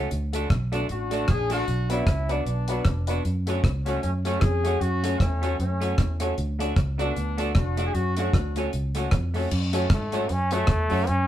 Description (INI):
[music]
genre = ska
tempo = 153 BPM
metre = 4/4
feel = swing 57% on 8ths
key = F# minor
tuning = A4 = 435 Hz
[part]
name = semi-hollow electric guitar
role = accompaniment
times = 0.0-11.0 s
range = A3 to F#4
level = -32 LUFS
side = right 4 dB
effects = tape echo
[part]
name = warm upright piano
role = stabs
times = 0.0-11.0 s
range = F#4 to D5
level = -32 LUFS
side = left 2 dB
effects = none
[part]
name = fingered electric bass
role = bass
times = 0.0-11.3 s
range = E#1 to G#2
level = -26 LUFS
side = equal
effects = none
[part]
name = deep reggae drum kit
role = drums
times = 0.1-11.2 s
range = crash cymbal, hi-hat, kick drum, rim click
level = -25 LUFS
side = equal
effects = none
[part]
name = mellow horn section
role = melody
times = 0.7-8.7 s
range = A3 to G#4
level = -30 LUFS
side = left 2 dB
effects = none
[part]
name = brilliant trombone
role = melody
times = 9.9-11.3 s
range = A3 to C#4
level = -26 LUFS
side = equal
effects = none
[sound]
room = moderate studio reverb, RT60 0.6 s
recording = band playing live in one room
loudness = -22 LUFS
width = side -12 dB against mid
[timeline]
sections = 0.0-9.5 A section; 9.5-11.3 B section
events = trombone solo 9.5-11.3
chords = 0.1 D; 1.7 Bm; 3.2 F#m; 6.4 D; 7.9 F#m